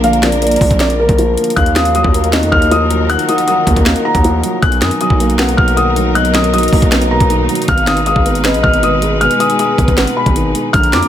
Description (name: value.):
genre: hip hop, trap.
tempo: 157 BPM.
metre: 4/4.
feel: half-time.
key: Eb harmonic minor.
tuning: A4 = 440 Hz.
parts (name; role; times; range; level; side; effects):
felt-muted upright piano; melody; 0.0-11.1 s; Bb4 to Gb6; -16 LUFS; left 1 dB; none.
dark baby grand piano; accompaniment; 0.0-11.1 s; B2 to D5; -18 LUFS; right 1 dB; none.
warm symphonic string section; sustained chords; 0.0-11.1 s; B2 to Cb5; -20 LUFS; left 2 dB; none.
distorted 808-style bass; bass; 0.0-11.0 s; Ab1 to F#2; -17 LUFS; equal; distortion.
trap drum kit; drums; 0.0-11.1 s; finger snaps, hi-hat, kick drum, snare drum; -16 LUFS; equal; none.
hollow clarinet-like synth lead; second line; 1.6-11.1 s; Eb5 to Bb5; -21 LUFS; left 2 dB; chorus, ping-pong delay.
room: light reverb, small room reverb.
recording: none.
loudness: -10 LUFS.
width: side -10 dB against mid.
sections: 0.0-1.6 A section; 1.6-11.1 B section.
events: none.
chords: 0.0 Bb; 1.6 Ebmadd9; 4.6 Bmaj7; 7.7 Abm.